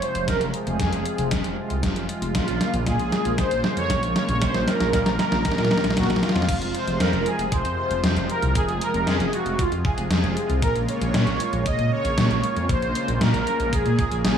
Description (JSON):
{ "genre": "synthwave", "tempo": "116 BPM", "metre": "4/4", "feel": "straight", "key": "F minor", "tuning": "A4 = 440 Hz", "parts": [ { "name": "soft supersaw", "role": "melody", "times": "0.0-14.4 s", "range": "F4 to Eb5", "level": "-25 LUFS", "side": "right 1 dB", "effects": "phaser, tape echo" }, { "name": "warm analog pad", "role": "sustained chords", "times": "0.0-14.4 s", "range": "C3 to F4", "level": "-30 LUFS", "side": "equal", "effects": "chorus, tremolo, sidechain pumping" }, { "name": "gated 80s digital drum machine", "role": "drums", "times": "0.0-14.3 s", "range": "crash cymbal, hi-hat, snare drum", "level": "-25 LUFS", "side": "equal", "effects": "gated reverb, gated reverb snare, overdrive" }, { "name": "dark detuned saw bass", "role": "bass", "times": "0.2-14.4 s", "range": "F1 to Bb2", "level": "-26 LUFS", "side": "equal", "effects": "sidechain pumping" }, { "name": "electronic kick drum", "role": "drums", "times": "0.3-14.1 s", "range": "none", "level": "-26 LUFS", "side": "equal", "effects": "overdrive" } ], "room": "light reverb, digital ambience", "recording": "small room ambience", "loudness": "-20 LUFS", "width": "side -8 dB against mid", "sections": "0.0-6.5 A section; 6.5-14.4 B section", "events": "drum fill 0.0-6.5", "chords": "0.0 Fm; 2.3 Bbm7; 6.5 Fm; 10.6 Bbm7" }